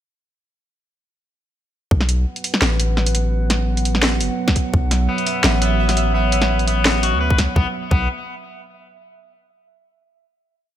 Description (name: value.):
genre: half-time drum and bass.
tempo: 170 BPM.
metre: 4/4.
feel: swing 54% on 16ths, half-time.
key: unclear.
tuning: A4 = 441 Hz.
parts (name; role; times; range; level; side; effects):
dark analog pad; sustained chords; 1.9-7.7 s; F#3 to F#5; -25 LUFS; right 4 dB; wide subtle chorus, sidechain pumping.
long sustained 808-style bass; bass; 1.9-8.1 s; F#1 to D2; -19 LUFS; equal; tube saturation.
electronic kick drum; drums; 1.9-2.0, 4.5-4.8, 7.3-8.0 s; none; -18 LUFS; equal; studio reverb.
drum and bass drum kit; drums; 2.0-7.5 s; hi-hat, snare drum; -20 LUFS; equal; studio reverb.
pulsing gated texture; texture; 5.1-7.6 s; E5; -29 LUFS; right 7 dB; chorus, built-in reverb.
electric guitar at the edge of break-up; arpeggios; 5.1-8.1 s; B3 to B4; -23 LUFS; left 5 dB; digital delay.
room: digital ambience.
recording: none.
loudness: -16 LUFS.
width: side -11 dB against mid.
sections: 1.9-7.6 drop; 7.6-9.0 final chord.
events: drop 1.9-7.6.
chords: 1.9 B5.